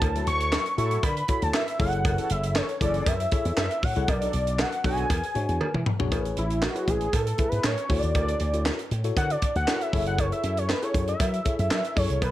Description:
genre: early-eighties boogie funk.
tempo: 118 BPM.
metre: 4/4.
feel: straight.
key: unclear.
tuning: A4 = 442 Hz.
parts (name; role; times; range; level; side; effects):
fat analog lead; melody; 0.0-12.3 s; E4 to C#6; -28 LUFS; equal; chorus, slapback echo.
tine electric piano; accompaniment; 0.0-12.2 s; D4 to E5; -33 LUFS; left 4 dB; auto-pan.
slap bass with an envelope filter; bass; 0.0-12.3 s; F#1 to F#3; -28 LUFS; equal; none.
tight funk drum kit; drums; 0.0-12.3 s; handclaps, hi-hat, kick drum, snare drum, toms; -28 LUFS; equal; none.
cowbell; percussion; 0.0-12.3 s; none; -35 LUFS; right 3 dB; none.
analog synth brass; second line; 0.2-5.1 s; D3 to A4; -36 LUFS; right 2 dB; chorus.
room: studio reverb.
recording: none.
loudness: -23 LUFS.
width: side -14 dB against mid.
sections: 0.0-6.1 A section; 6.1-12.3 B section.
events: drum fill 5.6-6.1; analog synth lead solo 6.1-12.3.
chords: 0.0 Dmaj9; 1.8 F#m9; 4.1 Bm7; 5.1 E13; 6.1 Amaj7; 7.9 Dmaj9; 9.9 F#m9.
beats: | 0.02 0.52 1.03 1.54 | 2.05 2.56 3.07 3.58 | 4.08 4.59 5.10 5.61 | 6.12 6.63 7.13 7.64 | 8.15 8.66 9.17 9.68 | 10.19 10.69 11.20 11.71 | 12.22.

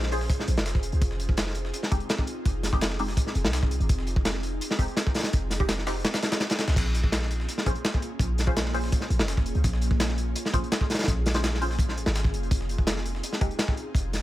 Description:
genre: drum and bass, jungle.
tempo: 167 BPM.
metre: 4/4.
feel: straight.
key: Bb minor.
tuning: A4 = 440 Hz.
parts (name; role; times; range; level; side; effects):
ethereal airy pad; sustained chords; 0.0-14.2 s; Bb3 to C5; -36 LUFS; right 1 dB; ensemble chorus, built-in reverb, vintage 12-bit sampler grit.
warm 808-style bass; bass; 0.0-14.2 s; F1 to Db2; -28 LUFS; equal; none.
crunchy breakbeat drum kit; drums; 0.0-14.2 s; crash cymbal, hi-hat, kick drum, snare drum; -26 LUFS; equal; none.
filtered dub chord stab; stabs; 0.1-13.5 s; Ab3 to C5; -34 LUFS; left 1 dB; phaser, wide subtle chorus, vintage 12-bit sampler grit, dub echo.
breakbeat sampler-style drum kit; drums; 0.1-14.2 s; hi-hat, snare drum; -38 LUFS; left 1 dB; high-pass filter on hats, high-pass filter on snare, high-pass filter on room.
room: studio reverb.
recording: none.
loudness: -24 LUFS.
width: side -15 dB against mid.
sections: 0.0-6.8 A section; 6.8-14.2 A section.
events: drop 0.0-6.8, 6.8-14.2.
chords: 0.0 Bbm7; 1.0 Fm7; 6.8 Bbm7; 12.5 Fm7.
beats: 0.30 0.66 | 1.02 1.38 1.74 2.10 | 2.46 2.82 3.17 3.53 | 3.89 4.25 4.61 4.97 | 5.33 5.69 6.05 6.41 | 6.77 7.13 7.49 7.85 | 8.21 8.56 8.92 9.28 | 9.64 10.00 10.36 10.72 | 11.08 11.44 11.80 12.16 | 12.52 12.88 13.23 13.59 | 13.95.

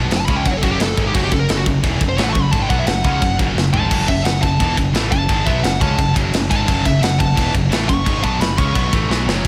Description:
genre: heavy metal.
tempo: 174 BPM.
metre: 4/4.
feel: straight.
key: F# minor.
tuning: A4 = 440 Hz.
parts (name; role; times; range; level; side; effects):
heavy high-gain guitar; riff; 0.0-9.5 s; E2 to C#4; -28 LUFS; equal; none.
high-gain distorted guitar; riff; 0.0-9.5 s; E2 to C#4; -26 LUFS; equal; none.
tight distorted guitar; riff; 0.0-9.5 s; E2 to C#4; -26 LUFS; equal; distortion.
growling picked electric bass; bass; 0.0-9.5 s; E1 to C#2; -24 LUFS; equal; overdrive.
tight metal drum kit; drums; 0.1-9.5 s; china cymbal, crash cymbal, kick drum, ride cymbal, snare drum, toms; -22 LUFS; equal; none.
high-gain lead guitar; melody; 0.2-8.9 s; F#4 to C#6; -25 LUFS; equal; distortion.
room: moderate lush hall reverb, RT60 1.7 s, studio reverb.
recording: big arena sound.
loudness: -17 LUFS.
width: mono.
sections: 0.0-9.4 A section.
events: lead electric guitar solo 0.0-9.4; drum fill 3.6-3.9, 9.1-9.4.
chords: 0.0 F#m.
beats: 0.11 0.45 0.80 | 1.15 1.49 1.84 2.18 | 2.53 2.88 3.22 3.57 | 3.91 4.26 4.61 4.95 | 5.30 5.64 5.99 6.33 | 6.68 7.02 7.37 7.71 | 8.06 8.41 8.75 9.10 | 9.44.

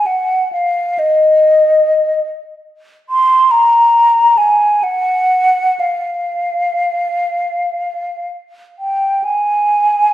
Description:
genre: classical, free, expressive piece for unaccompanied flute.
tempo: free time.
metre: none.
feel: none.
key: unclear.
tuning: A4 = 441 Hz.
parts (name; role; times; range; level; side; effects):
mellow hollow concert flute; solo; 0.0-10.1 s; Eb5 to C6; -11 LUFS; equal; none.
room: wet recital hall reverb, RT60 1.3 s.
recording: heard from further back in the room.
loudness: -11 LUFS.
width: side -13 dB against mid.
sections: 0.0-10.1 A section.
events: none.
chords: none.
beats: free time.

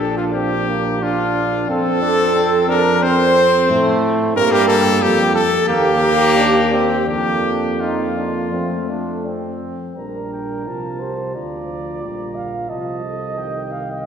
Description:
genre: classical, brass quintet.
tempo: 81-91 BPM.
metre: 4/4.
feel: rubato.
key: Bb major.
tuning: A4 = 441 Hz.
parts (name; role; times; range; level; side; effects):
warm trumpet; melody; 0.0-14.1 s; F4 to Bb5; -22 LUFS; left 5 dB; none.
mellow flugelhorn; second line; 0.0-14.1 s; F4 to F5; -21 LUFS; right 4 dB; none.
clear French horn; accompaniment; 0.0-14.1 s; A3 to A4; -23 LUFS; left 2 dB; none.
clear trombone; accompaniment; 0.0-14.1 s; Eb3 to Eb4; -24 LUFS; right 2 dB; none.
warm tuba; bass; 0.0-14.1 s; Bb1 to A2; -23 LUFS; right 1 dB; none.
room: wet concert hall reverb, RT60 2.0 s.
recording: heard from further back in the room.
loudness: -15 LUFS.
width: side -7 dB against mid.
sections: 0.0-10.0 A section; 10.0-14.1 B section.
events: none.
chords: 0.0 Bb; 1.7 F; 4.4 Gm; 5.7 Ebmaj7; 7.1 Bb/F; 8.5 F; 10.0 Bb; 11.3 Bb/D; 12.7 F7/C.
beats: 0.34 1.02 | 1.69 2.36 3.03 3.69 | 4.36 5.02 5.68 6.36 | 7.07 7.80 8.54 9.26 | 9.98 10.66 11.34 12.02 | 12.70 13.38.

